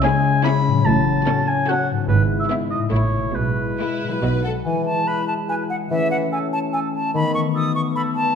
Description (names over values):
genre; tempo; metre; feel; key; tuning
cinematic, playful, whimsical film cue; 145 BPM; 3/4; straight; E major; A4 = 439 Hz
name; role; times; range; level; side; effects
rich chamber violin section; melody; 0.0-4.5 s; E4 to A4; -32 LUFS; left 4 dB; none
rich chamber violin section; second line; 0.0-4.5 s; E4 to B4; -31 LUFS; left 3 dB; none
warm oboe; second line; 0.0-8.1 s; A4 to B5; -24 LUFS; right 1 dB; none
rich chamber viola section; accompaniment; 0.0-4.5 s; F#3 to C#4; -30 LUFS; right 2 dB; none
mellow French horn section; sustained chords; 0.0-8.4 s; F#3 to E4; -27 LUFS; left 1 dB; none
concert harp; arpeggios; 0.0-8.4 s; G#2 to E5; -23 LUFS; left 8 dB; none
clear chamber double bass section; bass; 0.9-4.6 s; G#1 to B1; -23 LUFS; right 4 dB; none
warm chamber cello section; bass; 0.9-4.6 s; G#2 to B2; -27 LUFS; right 4 dB; none
silver concert flute; second line; 4.2-8.4 s; D#5 to D#6; -23 LUFS; equal; none
warm bassoon; accompaniment; 4.7-7.5 s; D#3 to E3; -26 LUFS; right 2 dB; none
room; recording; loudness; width
wet scoring stage reverb, RT60 1.7 s; none; -18 LUFS; side -6 dB against mid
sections
0.0-4.7 A section; 4.7-8.4 B section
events
none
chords
0.0 C#m; 0.9 F#m/A; 2.1 E/G#; 2.9 A; 3.4 E/B; 4.2 B; 4.7 E; 5.9 A/E; 7.1 B7/D#